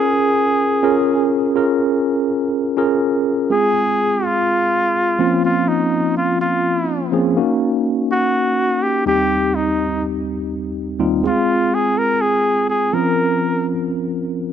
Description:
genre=pop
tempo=124 BPM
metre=4/4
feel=swing 55% on 16ths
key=Bb minor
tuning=A4 = 438 Hz
part: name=clear flugelhorn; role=melody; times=0.0-13.7 s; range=Eb4 to Bb4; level=-18 LUFS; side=equal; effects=none
part: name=tine electric piano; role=accompaniment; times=0.0-14.5 s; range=Eb2 to Bb4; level=-18 LUFS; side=equal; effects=medium stereo tremolo
room=light reverb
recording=dry, close 1970s-style studio recording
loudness=-15 LUFS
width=side -9 dB against mid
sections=0.0-1.6 A section; 1.6-3.5 B section; 3.5-14.5 C section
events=none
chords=0.0 Bbm7; 3.5 Fm; 5.2 Bbmadd9/F; 7.4 Ebm7; 9.1 Cm/Eb; 11.2 Fm; 12.9 Bbmadd9/F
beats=0.11 0.60 1.08 | 1.56 2.05 2.53 3.02 | 3.50 3.98 4.47 4.95 | 5.43 5.92 6.40 6.89 | 7.37 7.86 8.34 8.82 | 9.31 9.79 10.27 10.76 | 11.24 11.72 12.21 12.69 | 13.18 13.66 14.14

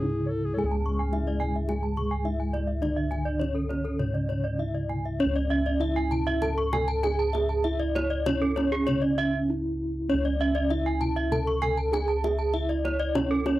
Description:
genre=Balinese gamelan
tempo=98-110 BPM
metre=4/4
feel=straight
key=C# pelog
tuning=A4 = 440 Hz
part: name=gamelan-type bronze metallophone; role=melody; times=0.0-13.6 s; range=C#4 to A4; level=-28 LUFS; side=right 2 dB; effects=none
part: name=dark clarinet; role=second line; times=0.0-1.9 s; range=C#4 to C#5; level=-35 LUFS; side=left 2 dB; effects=none
part: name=gamelan-type bronze metallophone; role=accompaniment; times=0.0-5.2 s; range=C#3 to G#3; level=-34 LUFS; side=left 1 dB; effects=none
part: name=gamelan-type bossed gongs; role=bass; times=0.0-13.6 s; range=C#2 to G#4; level=-29 LUFS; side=equal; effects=transformer saturation
part: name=gamelan-type bronze metallophone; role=arpeggios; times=0.6-13.6 s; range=A4 to C#6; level=-33 LUFS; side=left 5 dB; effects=none
part: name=gamelan-type bronze metallophone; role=arpeggios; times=0.7-13.5 s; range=G#4 to A5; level=-32 LUFS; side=right 4 dB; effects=none
part: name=kendang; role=percussion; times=0.7-13.6 s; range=none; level=-36 LUFS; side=left 1 dB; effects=none
room=little or no reverb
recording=dry, gritty hardware recording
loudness=-24 LUFS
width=side -15 dB against mid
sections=0.0-5.2 A section; 5.2-13.6 B section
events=break 0.0-0.6, 9.2-10.1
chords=none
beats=0.03 | 0.57 1.12 1.68 2.25 | 2.82 3.40 3.99 4.59 | 5.20 5.81 6.42 7.04 | 7.65 8.26 8.87 9.48 | 10.10 10.71 11.32 11.93 | 12.54 13.16

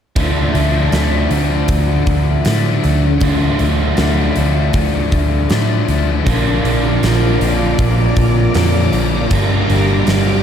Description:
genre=rock, shoegaze and dream pop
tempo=79 BPM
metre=4/4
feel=straight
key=D minor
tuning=A4 = 438 Hz
part: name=overdriven electric guitar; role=riff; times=0.2-10.4 s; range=G2 to D4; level=-19 LUFS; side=left 8 dB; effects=analog chorus
part: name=overdriven semi-hollow guitar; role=riff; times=0.2-10.4 s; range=G2 to G4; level=-19 LUFS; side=right 5 dB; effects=reverse reverb
part: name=vintage muted picked electric bass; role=bass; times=0.2-10.4 s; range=G1 to A2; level=-17 LUFS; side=equal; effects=none
part: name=huge arena drum kit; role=drums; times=0.2-10.3 s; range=hi-hat, kick drum, snare drum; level=-20 LUFS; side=equal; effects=none
part: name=string machine, violins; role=sustained chords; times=6.3-10.4 s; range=F4 to D6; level=-21 LUFS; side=equal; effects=ensemble chorus
room=moderate lush hall reverb, RT60 1.6 s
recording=dreamy mix soaked in reverb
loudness=-12 LUFS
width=side -8 dB against mid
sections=0.2-10.4 A section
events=none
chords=0.2 Dm; 6.3 Bb; 9.3 Gm7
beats=| 0.17 0.93 1.69 2.45 | 3.21 3.98 4.74 5.50 | 6.26 7.02 7.79 8.55 | 9.31 10.07

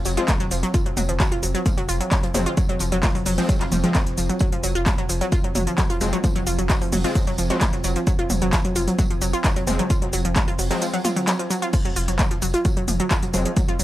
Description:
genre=driving peak-time techno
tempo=131 BPM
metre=4/4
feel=straight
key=F phrygian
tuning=A4 = 438 Hz
part: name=saturated sub bass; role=bass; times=0.0-13.8 s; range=F1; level=-27 LUFS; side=equal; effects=tube saturation, sidechain pumping, low-pass filter
part: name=metallic inharmonic drone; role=drone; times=0.0-13.8 s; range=F3 to C4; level=-32 LUFS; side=right 1 dB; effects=chorus, built-in reverb, sidechain pumping
part: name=tight metal drum kit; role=drums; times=0.0-13.8 s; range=hi-hat, snare drum, tambourine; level=-38 LUFS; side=right 1 dB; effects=sidechain pumping on hats, high-pass filter on hats, high-pass filter on snare, sidechain pumping on perc, high-pass filter on perc, high-pass filter on room
part: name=wide unison pluck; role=riff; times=0.1-13.8 s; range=F3 to F4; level=-25 LUFS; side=equal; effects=tube saturation, cassette tape, sidechain pumping, tape echo
part: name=techno drum kit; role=drums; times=0.1-13.8 s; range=crash cymbal, handclaps, hi-hat, shaker, toms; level=-26 LUFS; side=equal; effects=overdrive, sidechain pumping on hats, sidechain pumping on perc, sidechain pumping on toms, sidechain pumping on cymbals
part: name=supersaw stab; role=stabs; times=0.2-13.5 s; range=F3 to C4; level=-30 LUFS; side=left 2 dB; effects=wide subtle chorus, sidechain pumping, tape echo
part: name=electronic kick drum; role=drums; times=0.3-13.7 s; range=none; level=-22 LUFS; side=equal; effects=overdrive
room=little or no reverb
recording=dry, gritty hardware recording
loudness=-19 LUFS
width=side -14 dB against mid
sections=0.0-13.8 A section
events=none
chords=0.0 F5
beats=0.28 | 0.74 1.20 1.66 2.12 | 2.57 3.03 3.49 3.95 | 4.41 4.86 5.32 5.78 | 6.24 6.70 7.15 7.61 | 8.07 8.53 8.98 9.44 | 9.90 10.36 10.82 11.28 | 11.73 12.19 12.65 13.11 | 13.57

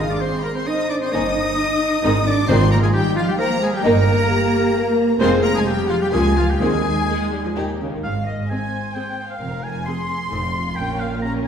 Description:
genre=quick classical-period movement for symphony orchestra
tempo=131 BPM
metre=3/4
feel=straight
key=Ab major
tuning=A4 = 440 Hz
part: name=warm studio violin section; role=melody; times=0.0-11.5 s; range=F4 to Eb6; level=-27 LUFS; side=left 3 dB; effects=none
part: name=clear clarinet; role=second line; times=0.0-7.6 s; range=F4 to Eb5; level=-26 LUFS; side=left 3 dB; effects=none
part: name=clear oboe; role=second line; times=0.0-11.5 s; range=F4 to C6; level=-29 LUFS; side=right 1 dB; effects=none
part: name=dark French horn section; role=sustained chords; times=0.0-7.8 s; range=Eb4 to C5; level=-23 LUFS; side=left 2 dB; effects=none
part: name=rich studio cello section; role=bass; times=0.0-11.5 s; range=F2 to Eb4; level=-24 LUFS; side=right 2 dB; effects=none
part: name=warm studio double bass section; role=bass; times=0.0-11.5 s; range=F1 to Eb2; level=-24 LUFS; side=right 1 dB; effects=none
part: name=timpani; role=percussion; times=0.0-0.4, 2.5-3.1, 6.6-7.3 s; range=Ab2 to Eb3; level=-26 LUFS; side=equal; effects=none
part: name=rich studio violin section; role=second line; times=1.1-11.3 s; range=C4 to C6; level=-28 LUFS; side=left 2 dB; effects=none
part: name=rich studio viola section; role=accompaniment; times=1.1-11.5 s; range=Db3 to Bb4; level=-25 LUFS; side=right 2 dB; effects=none
room=wet scoring stage reverb, RT60 1.6 s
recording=heard from further back in the room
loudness=-17 LUFS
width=side -8 dB against mid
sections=0.0-8.0 A section; 8.0-11.5 B section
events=none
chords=0.0 Ab; 1.1 Eb7/G; 2.0 Ab; 3.8 Eb/G; 5.2 Fm; 6.1 Bbm7/Db; 6.6 Ab/Eb; 7.6 Eb; 8.0 Ab; 9.4 Fm; 10.3 F7; 10.8 Bbm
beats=0.22 0.67 | 1.13 1.58 2.04 | 2.50 2.95 3.40 | 3.85 4.29 4.75 | 5.20 5.66 6.12 | 6.60 7.07 7.55 | 8.03 8.49 8.95 | 9.41 9.86 10.31 | 10.77 11.23

